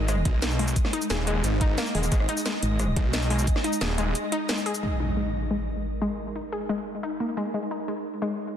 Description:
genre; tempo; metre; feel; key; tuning
dark technical drum and bass; 177 BPM; 4/4; straight; G# minor; A4 = 440 Hz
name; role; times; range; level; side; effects
swarming drone; sustained chords; 0.0-8.6 s; G#3 to D#5; -33 LUFS; equal; built-in reverb, sidechain pumping
metallic wobble bass; bass; 0.0-3.0 s; D#1 to G#1; -25 LUFS; equal; chorus, tube saturation
wide unison pluck; arpeggios; 0.1-8.3 s; G#3 to G#4; -30 LUFS; left 2 dB; cassette tape, sidechain pumping, digital delay
drum and bass drum kit; drums; 0.1-4.9 s; cabasa, crash cymbal, hi-hat, rim click, snare drum; -30 LUFS; equal; low-pass filter on hats, low-pass filter on perc, low-pass filter on snare, low-pass filter on cymbals, low-pass filter on room
snarling distorted saw bass; bass; 0.3-4.1 s; D#1 to B1; -26 LUFS; equal; distortion, tube saturation, sidechain pumping
electronic kick drum; drums; 0.3-3.5 s; none; -24 LUFS; equal; none
impact; sound effects; 4.8-6.2 s; none; -30 LUFS; equal; none
room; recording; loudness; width
light reverb; dense, heavily limited modern master; -24 LUFS; side -9 dB against mid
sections
0.0-4.8 A section; 4.8-8.6 B section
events
drop 0.0-4.8; break 4.2-4.8; impact 4.8-6.2; filter sweep on synth drone 4.8-8.6; filter sweep on synth arpeggio sound 4.8-8.6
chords
0.0 G#m; 4.8 G#sus2

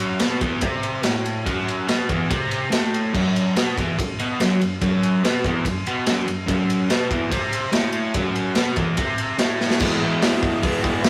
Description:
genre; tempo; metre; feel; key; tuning
garage rock duo or trio; 144 BPM; 4/4; straight; unclear; A4 = 444 Hz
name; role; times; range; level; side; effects
crunchy overdriven guitar; riff; 0.0-11.1 s; E2 to E4; -24 LUFS; equal; none
crunchy breakbeat drum kit; drums; 0.0-11.1 s; crash cymbal, hi-hat, kick drum, ride cymbal, snare drum; -25 LUFS; equal; none
room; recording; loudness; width
moderate stone room reverb, RT60 1.4 s; rough rehearsal-room recording, warm saturation; -21 LUFS; mono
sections
0.0-9.8 A section; 9.8-11.1 B section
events
drum fill 9.6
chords
0.0 Am69/E; 9.8 E

